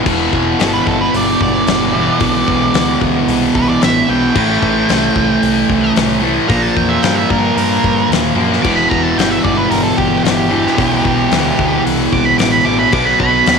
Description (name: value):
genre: blues rock power trio and southern rock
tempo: 112 BPM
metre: 4/4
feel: straight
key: E minor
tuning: A4 = 439 Hz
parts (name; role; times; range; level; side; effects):
- thick fuzz guitar; riff; 0.0-13.6 s; E2 to B3; -13 LUFS; equal; distortion
- growling picked electric bass; bass; 0.1-13.6 s; E1 to G2; -22 LUFS; equal; overdrive
- big rock drum kit; drums; 0.1-13.6 s; crash cymbal, hi-hat, kick drum, snare drum; -20 LUFS; left 5 dB; none
- octave-fuzz lead guitar; melody; 0.6-13.6 s; G4 to D6; -18 LUFS; right 4 dB; distortion
room: light reverb, small room reverb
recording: 1960s-style stereo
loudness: -11 LUFS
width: side -5 dB against mid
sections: 0.0-13.6 A section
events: lead electric guitar solo 0.0-13.6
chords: 0.0 Em7; 4.3 Am7; 6.5 A#5; 8.6 Em; 12.9 B